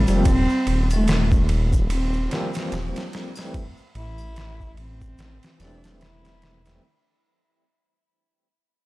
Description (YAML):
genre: trip hop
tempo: 73 BPM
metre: 4/4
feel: swing 58% on 16ths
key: unclear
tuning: A4 = 440 Hz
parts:
  - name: dark cello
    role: melody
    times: 0.0-6.8 s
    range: G3 to E4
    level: -26 LUFS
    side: right 1 dB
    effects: tape echo
  - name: overdriven tine electric piano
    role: accompaniment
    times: 0.0-6.8 s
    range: E3 to C4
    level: -29 LUFS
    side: equal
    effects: tremolo, tape echo
  - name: dark detuned saw bass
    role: bass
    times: 0.0-6.8 s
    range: Eb1 to A1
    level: -22 LUFS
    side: equal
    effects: none
  - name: trip hop sampler-style drum kit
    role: drums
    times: 0.1-6.8 s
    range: kick drum, ride cymbal, snare drum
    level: -25 LUFS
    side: equal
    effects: none
  - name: tube shaker and triangle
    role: percussion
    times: 0.1-6.8 s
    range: none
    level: -43 LUFS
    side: left 5 dB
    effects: none
room: little or no reverb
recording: dark, warm production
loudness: -19 LUFS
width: side -20 dB against mid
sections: 0.0-6.8 A section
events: fade-out 0.0-6.8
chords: 0.3 Eb6; 3.5 Am7